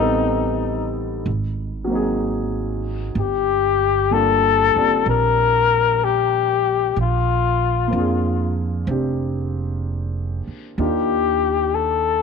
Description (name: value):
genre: jazz ballad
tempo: 63 BPM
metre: 4/4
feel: swing 67% on 8ths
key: Bb major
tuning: A4 = 441 Hz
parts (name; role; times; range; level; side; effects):
- mellow flugelhorn; melody; 0.0-12.2 s; Eb4 to Bb4; -18 LUFS; left 10 dB; none
- warm grand piano; accompaniment; 0.0-12.2 s; Gb3 to D5; -24 LUFS; right 1 dB; none
- upright bass; bass; 0.0-12.2 s; F1 to F2; -24 LUFS; right 3 dB; none
room: light reverb, small room ambience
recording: none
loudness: -18 LUFS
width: side -5 dB against mid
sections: 0.0-12.2 A section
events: none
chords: 0.0 Am7b5; 1.3 Ab9; 3.2 Gm9; 7.0 Bb9; 10.8 Ebmaj9